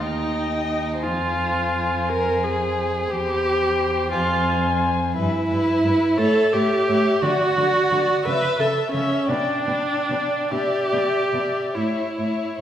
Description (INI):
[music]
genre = classical, slow romantic movement for string quartet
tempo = 46-60 BPM (dotted quarters)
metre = 6/8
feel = rubato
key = unclear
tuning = A4 = 440 Hz
[part]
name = muted violin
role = melody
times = 0.0-12.6 s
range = E5 to Ab5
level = -28 LUFS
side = left 6 dB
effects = none
[part]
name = muted violin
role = second line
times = 0.0-12.6 s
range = B4 to E5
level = -28 LUFS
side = left 2 dB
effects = none
[part]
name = muted viola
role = accompaniment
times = 0.0-12.6 s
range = C#4 to B4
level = -21 LUFS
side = right 2 dB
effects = none
[part]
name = muted cello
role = bass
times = 0.0-12.6 s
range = Eb2 to D3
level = -27 LUFS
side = right 2 dB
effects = none
[sound]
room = wet recital hall reverb, RT60 1.5 s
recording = recorded in a church or concert hall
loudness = -19 LUFS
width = side -10 dB against mid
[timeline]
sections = 0.0-12.6 A section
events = none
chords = 0.0 Eb; 1.0 Fm; 3.1 C/E; 4.1 Fm; 5.2 Em/G; 6.2 A; 7.2 D; 8.2 C#m7; 9.3 G/B; 10.5 Em7/B; 11.7 A